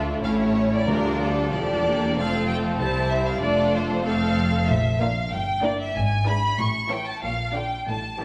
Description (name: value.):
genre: quick classical-period movement for symphony orchestra.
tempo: 94 BPM.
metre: 2/4.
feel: rubato.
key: D minor.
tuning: A4 = 436 Hz.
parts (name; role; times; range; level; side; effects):
warm symphonic violin section; second line; 0.0-8.2 s; E4 to D5; -33 LUFS; equal; none.
rich studio viola section; accompaniment; 0.0-8.2 s; D3 to D4; -29 LUFS; equal; none.
rich chamber double bass section; bass; 0.0-8.2 s; E1 to D2; -31 LUFS; equal; none.
warm chamber cello section; bass; 0.0-8.2 s; C2 to Bb2; -32 LUFS; equal; none.
timpani; percussion; 0.0-1.8 s; D3; -34 LUFS; equal; none.
rich studio violin section; melody; 0.2-8.2 s; A4 to C#6; -28 LUFS; equal; none.
room: wet scoring stage reverb, RT60 1.8 s.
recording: none.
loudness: -23 LUFS.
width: mono.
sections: 0.0-8.2 A section.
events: none.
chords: 0.2 A; 0.9 Dm; 2.2 F; 2.8 C; 3.4 F; 4.7 Bb; 5.3 Em7b5/G; 5.9 E7/G#; 6.6 A; 7.2 Bb.